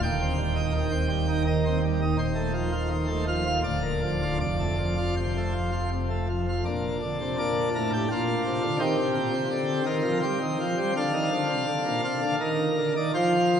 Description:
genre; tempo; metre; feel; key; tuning
classical, chorale-style piece for pipe organ; 83 BPM; 3/4; rubato; Bb major; A4 = 440 Hz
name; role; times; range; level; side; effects
pipe organ, plenum; solo; 0.0-13.6 s; D1 to G5; -24 LUFS; equal; none
room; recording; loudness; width
wet cathedral reverb, RT60 5.0 s; recorded in a church or concert hall; -24 LUFS; side -8 dB against mid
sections
0.0-6.7 A section; 6.7-13.6 B section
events
none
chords
0.0 Cm/Eb; 2.2 F7/Eb; 3.6 Bb/D; 4.4 F; 6.7 Bb; 8.8 Cm; 11.0 Bb; 12.4 Bbadd11

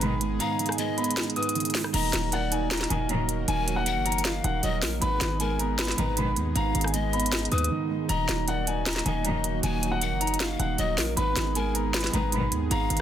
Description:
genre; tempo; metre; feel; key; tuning
hip hop, trap; 156 BPM; 4/4; half-time; Eb minor; A4 = 442 Hz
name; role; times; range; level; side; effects
dark concert grand piano; melody; 0.0-13.0 s; Eb5 to Eb6; -31 LUFS; left 2 dB; low-pass filter, ping-pong delay
breathy polished pan flute; second line; 0.0-13.0 s; Bb4 to Ab5; -35 LUFS; left 8 dB; ping-pong delay
felt-muted upright piano; accompaniment; 0.0-13.0 s; Ab2 to Eb5; -32 LUFS; right 6 dB; low-pass filter
warm analog pad; sustained chords; 0.0-13.0 s; Eb3 to Bb4; -35 LUFS; right 1 dB; chorus
muted studio string section; stabs; 0.0-0.3, 2.9-3.4, 6.0-6.4, 9.1-9.5, 12.1-12.6 s; Bb1 to Eb3; -33 LUFS; equal; none
hard-hitting 808-style bass; bass; 0.0-13.0 s; Eb1 to Eb2; -30 LUFS; equal; none
trap drum kit; drums; 0.0-13.0 s; crash cymbal, hi-hat, rim click, snare drum; -29 LUFS; right 1 dB; none
room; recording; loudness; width
small room ambience; dense, heavily limited modern master; -24 LUFS; side -10 dB against mid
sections
0.0-1.9 A section; 1.9-13.0 A section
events
kick muted 0.4-1.9; break 7.7-8.1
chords
0.0 Abm; 1.9 Ebm; 5.0 Abm; 8.1 Ebm; 11.2 Abm

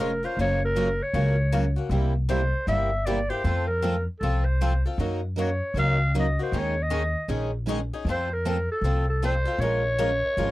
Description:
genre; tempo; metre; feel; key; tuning
acoustic string swing (jazz manouche); 156 BPM; 4/4; swing 62% on 8ths; unclear; A4 = 440 Hz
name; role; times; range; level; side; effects
growling clarinet; melody; 0.0-10.5 s; A4 to F5-21c; -27 LUFS; equal; none
picked steel-string acoustic guitar; accompaniment; 0.0-10.5 s; C3 to Bb4; -32 LUFS; right 5 dB; none
picked swing-style acoustic guitar; accompaniment; 0.0-10.5 s; C3 to Bb4; -31 LUFS; left 5 dB; none
upright bass; bass; 0.0-10.5 s; F1 to Gb2; -26 LUFS; equal; none
room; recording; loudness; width
little or no reverb; dry, close 1970s-style studio recording; -23 LUFS; side -17 dB against mid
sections
0.0-10.5 A section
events
none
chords
0.4 Gbmaj7; 1.9 C7; 3.5 F; 5.0 Gb6; 6.5 Eb7sus4; 8.1 F; 9.6 Bbm7

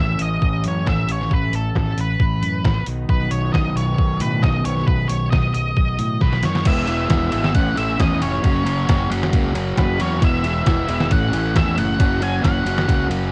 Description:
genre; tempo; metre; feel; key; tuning
indie rock; 135 BPM; 4/4; straight; unclear; A4 = 441 Hz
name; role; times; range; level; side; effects
octave-fuzz lead guitar; melody; 0.0-13.1 s; A4 to G#5; -28 LUFS; equal; distortion, cassette tape
crunchy overdriven guitar; riff; 0.0-13.3 s; A2 to F#4; -24 LUFS; equal; cassette tape
growling fingered electric bass; bass; 0.0-13.3 s; E1 to A2; -27 LUFS; equal; overdrive
trip hop sampler-style drum kit; drums; 0.2-13.2 s; crash cymbal, hi-hat, kick drum, ride cymbal, snare drum; -22 LUFS; equal; none
room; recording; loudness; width
light reverb; home recording on cassette; -19 LUFS; mono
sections
0.0-6.7 A section; 6.7-13.3 B section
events
drum fill 6.2-6.7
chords
0.0 Aadd9; 2.9 B; 6.7 E; 7.6 A; 8.4 F#; 10.2 E; 11.1 A; 12.0 F#

